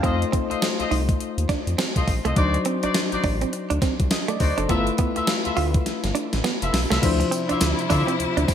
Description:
R&B, new jack swing; 103 BPM; 4/4; swing 60% on 16ths; D minor; A4 = 440 Hz
soft electric-piano-like synth keys; accompaniment; 0.0-8.5 s; F3 to F5; -27 LUFS; left 4 dB; chorus
direct-recorded clean electric guitar; riff; 0.0-8.5 s; A3 to F4; -29 LUFS; right 7 dB; lush chorus
warm horn section; stabs; 0.0-8.1 s; Eb4 to E5; -29 LUFS; left 2 dB; ping-pong delay
round analog bass; bass; 0.0-8.5 s; F1 to D3; -25 LUFS; equal
gated 80s digital drum machine; drums; 0.0-8.5 s; crash cymbal, hi-hat, kick drum, snare drum, tambourine; -24 LUFS; equal; gated reverb, gated reverb snare, overdrive
rich studio string section; sustained chords; 7.0-8.5 s; C3 to E4; -27 LUFS; left 2 dB
light reverb; bright 1980s-style digital production; -20 LUFS; side -9 dB against mid
0.0-7.0 A section; 7.0-8.5 B section
drum fill 5.9-7.0
0.0 F7; 2.4 D7b9; 4.7 G13; 7.0 Dm9
| 0.04 0.62 1.20 1.78 | 2.37 2.95 3.53 4.11 | 4.70 5.28 5.86 6.44 | 7.03 7.61 8.19

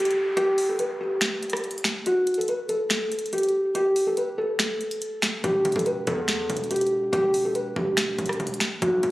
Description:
hip hop, trap; 142 BPM; 4/4; half-time; E minor; A4 = 436 Hz
felt-muted upright piano; melody; 0.0-9.1 s; F#4 to B4; -24 LUFS; equal; ping-pong delay
trap drum kit; drums; 0.0-9.1 s; finger snaps, hi-hat, kick drum, rim click, snare drum; -27 LUFS; equal
downlifter; sound effects; 0.0-2.1 s; -39 LUFS; equal
distorted 808-style bass; bass; 5.4-9.1 s; E1 to E2; -31 LUFS; equal; distortion
light reverb, digital ambience; recorded on a phone in the room, club reverb; -22 LUFS; side -18 dB against mid
0.0-9.1 A section
break 0.0-5.4
0.0 N.C.; 5.4 Em
| 0.37 0.79 1.22 1.64 | 2.06 2.48 2.90 3.33 | 3.75 4.17 4.59 5.02 | 5.44 5.86 6.29 6.71 | 7.13 7.55 7.98 8.40 | 8.82

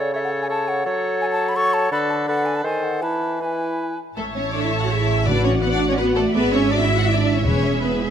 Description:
quick classical-period movement for symphony orchestra; 154-171 BPM; 3/4; rubato; A major; A4 = 440 Hz
bright clarinet; second line; 0.0-4.0 s; E4 to A4; -26 LUFS; left 4 dB
clear oboe; second line; 0.0-4.0 s; B4 to C#5; -27 LUFS; right 2 dB
mellow concert flute; second line; 0.0-4.0 s; D5 to C#6; -25 LUFS; left 1 dB
warm bassoon; accompaniment; 0.0-4.0 s; C#3 to F#3; -25 LUFS; right 1 dB
warm studio violin section; melody; 4.2-8.1 s; E5 to A5; -31 LUFS; left 4 dB
rich chamber violin section; second line; 4.2-8.1 s; A4 to F#5; -25 LUFS; left 5 dB
warm studio viola section; accompaniment; 4.2-8.1 s; G#4 to F#5; -28 LUFS; right 2 dB
clear symphonic double bass section; bass; 4.2-8.1 s; E1 to A1; -23 LUFS; right 4 dB
warm chamber cello section; bass; 4.2-8.1 s; A3 to F#4; -23 LUFS; right 4 dB
mellow French horn section; sustained chords; 4.5-8.1 s; E4 to A4; -25 LUFS; left 4 dB
timpani; percussion; 5.3-8.0 s; E2 to A2; -25 LUFS; left 2 dB
moderate concert hall reverb, RT60 2.2 s; -18 LUFS; side -8 dB against mid
0.0-4.2 A section; 4.2-8.1 B section
0.0 A/C#; 0.9 F#m; 1.9 Bm7/D; 2.6 D#dim7; 3.0 E; 4.2 A; 5.3 Bm7/A; 6.4 E7/G#; 7.4 E
0.13 0.49 | 0.85 1.21 1.56 | 1.92 2.28 2.65 | 3.03 3.41 3.79 | 4.17 4.54 4.91 | 5.27 5.63 5.99 | 6.35 6.71 7.08 | 7.45 7.82

